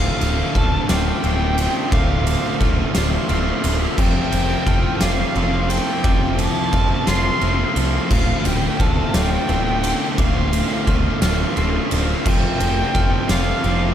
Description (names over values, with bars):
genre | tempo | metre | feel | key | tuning
post-rock | 58 BPM (dotted quarters) | 6/8 | straight | D minor | A4 = 440 Hz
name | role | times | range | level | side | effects
muted violin | melody | 0.0-13.9 s | F5 to C6 | -25 LUFS | equal | tape echo
lush unison pad | sustained chords | 0.7-13.9 s | C4 to F5 | -35 LUFS | equal | none
twangy electric guitar | arpeggios | 0.0-13.9 s | D2 to F4 | -31 LUFS | left 3 dB | none
crunchy overdriven guitar | riff | 0.0-13.9 s | D2 to F4 | -26 LUFS | right 10 dB | none
sludgy distorted guitar | riff | 0.0-13.9 s | D2 to F4 | -25 LUFS | left 8 dB | overdrive, slapback echo
growling picked electric bass | bass | 0.0-13.9 s | D1 to C2 | -22 LUFS | equal | overdrive
oversized low-tuned drum kit | drums | 0.2-13.8 s | crash cymbal, kick drum, ride cymbal, snare drum | -21 LUFS | equal | none
glockenspiel with hard plastic mallets | arpeggios | 0.6-13.9 s | C6 to F6 | -34 LUFS | right 2 dB | slapback echo, tape echo
room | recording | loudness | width
moderate lush hall reverb, RT60 1.6 s, small room ambience | big arena sound | -16 LUFS | side -10 dB against mid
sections
0.0-13.9 A section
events
none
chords
0.0 Dm7; 4.0 F; 8.1 Dm7; 12.3 F